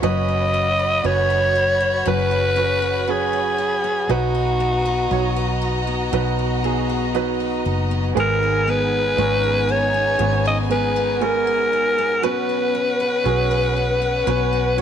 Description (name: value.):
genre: pop ballad.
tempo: 59 BPM.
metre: 4/4.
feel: straight.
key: B major.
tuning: A4 = 440 Hz.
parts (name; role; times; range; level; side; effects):
breathy alto saxophone; melody; 0.0-14.8 s; F#4 to D#5; -20 LUFS; left 1 dB; slapback echo.
warm studio violin section; second line; 0.0-14.8 s; B3 to B5; -27 LUFS; left 1 dB; none.
clear baby grand piano; accompaniment; 0.0-14.8 s; G#2 to C#5; -26 LUFS; right 14 dB; none.
picked steel-string acoustic guitar; arpeggios; 0.0-14.8 s; G#2 to B4; -29 LUFS; left 12 dB; none.
vintage muted fingered electric bass; bass; 0.0-14.8 s; F#1 to B1; -24 LUFS; equal; none.
room: light reverb.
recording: 1960s-style stereo with parts hard left and right.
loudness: -17 LUFS.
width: side -8 dB against mid.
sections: 0.0-14.8 A section.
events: none.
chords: 0.0 F#sus4; 4.1 B; 8.2 G#madd9; 12.2 Bsus2.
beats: | 0.03 1.04 2.06 3.08 | 4.09 5.11 6.13 7.15 | 8.16 9.18 10.20 11.21 | 12.23 13.25 14.26.